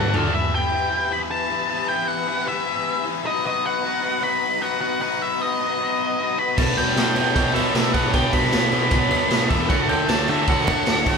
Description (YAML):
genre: indie rock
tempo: 154 BPM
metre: 4/4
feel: straight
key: E minor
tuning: A4 = 444 Hz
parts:
  - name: octave-fuzz lead guitar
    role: melody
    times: 0.0-11.2 s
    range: D#5 to B5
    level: -24 LUFS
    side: equal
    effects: distortion
  - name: string machine, violins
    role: sustained chords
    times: 0.0-11.2 s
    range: G4 to E6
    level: -34 LUFS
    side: left 1 dB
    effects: ensemble chorus
  - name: overdriven electric guitar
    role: riff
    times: 0.0-11.2 s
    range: B2 to B4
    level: -25 LUFS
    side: left 6 dB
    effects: none
  - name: scooped high-gain guitar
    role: riff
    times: 0.0-0.3, 6.6-11.2 s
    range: B2 to D4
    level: -28 LUFS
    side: right 6 dB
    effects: distortion
  - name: fuzz picked electric bass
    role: bass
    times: 0.0-0.2, 6.6-11.2 s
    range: D2 to D3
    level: -25 LUFS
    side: right 1 dB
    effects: overdrive
  - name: raw garage drum kit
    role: drums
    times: 0.1-0.2, 6.6-11.2 s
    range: crash cymbal, kick drum, ride cymbal, snare drum, toms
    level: -21 LUFS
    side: right 1 dB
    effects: none
room: moderate large studio reverb, RT60 1.3 s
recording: band playing live in one room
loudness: -18 LUFS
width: side -5 dB against mid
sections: 0.3-11.2 A section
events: drum fill 0.0-0.3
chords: 0.3 Em; 3.3 B; 6.6 G/B; 9.7 D